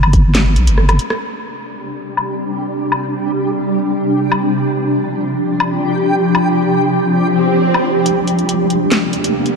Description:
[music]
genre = deep dubstep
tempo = 140 BPM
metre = 4/4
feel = half-time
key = unclear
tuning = A4 = 440 Hz
[part]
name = deep soft wobble bass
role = bass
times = 0.0-1.0, 8.1-9.4 s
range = G1 to Eb2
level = -14 LUFS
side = equal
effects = chorus, high-pass filter
[part]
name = garage drum kit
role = drums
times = 0.0-9.5 s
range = hi-hat, rim click, snare drum, woodblock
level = -21 LUFS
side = left 2 dB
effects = low-pass filter on hats, low-pass filter on perc, low-pass filter on snare, low-pass filter on room
[part]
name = granular cloud pad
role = sustained chords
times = 1.8-9.6 s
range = C3 to D4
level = -16 LUFS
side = equal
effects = built-in reverb, ensemble chorus
[part]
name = backwards swelling texture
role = texture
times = 2.2-9.6 s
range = G4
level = -20 LUFS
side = right 1 dB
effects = built-in reverb, analog chorus
[part]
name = swell and riser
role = sound effects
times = 7.3-9.6 s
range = none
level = -22 LUFS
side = right 3 dB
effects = none
[sound]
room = wet cathedral reverb, RT60 6.0 s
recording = dreamy mix soaked in reverb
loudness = -13 LUFS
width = side -5 dB against mid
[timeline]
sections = 0.0-1.2 A section; 1.2-8.1 B section; 8.1-9.6 C section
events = drum fill 0.8-1.2; filter sweep on drum 1.2-8.1; swell 7.3-8.1; build-up 8.1-9.6; riser 8.1-9.6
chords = 0.0 N.C.; 1.2 C5; 8.1 Cm

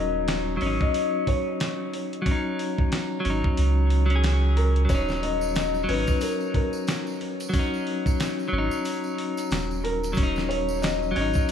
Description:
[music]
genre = trip hop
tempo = 91 BPM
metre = 4/4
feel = swing 59% on 16ths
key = Eb minor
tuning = A4 = 438 Hz
[part]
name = felt-muted upright piano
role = melody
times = 0.0-11.5 s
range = Bb4 to Eb5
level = -30 LUFS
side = left 2 dB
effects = tape echo
[part]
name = clean electric guitar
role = accompaniment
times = 0.0-11.5 s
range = Gb3 to Ab4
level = -27 LUFS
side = left 2 dB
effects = harmonic tremolo, low-pass filter, tape echo
[part]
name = warm sub bass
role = bass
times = 0.0-11.3 s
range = Eb1 to Db2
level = -24 LUFS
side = right 1 dB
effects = none
[part]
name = dusty soul sampler-style drum kit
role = drums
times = 0.3-11.5 s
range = hi-hat, kick drum, snare drum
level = -28 LUFS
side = equal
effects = studio reverb
[part]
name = tambourine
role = percussion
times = 4.9-11.5 s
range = none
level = -43 LUFS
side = right 3 dB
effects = none
[sound]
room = moderate plate reverb, RT60 2.4 s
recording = dreamy mix soaked in reverb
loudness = -22 LUFS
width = side -8 dB against mid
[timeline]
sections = 0.0-11.5 A section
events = none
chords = 0.0 Ebm7

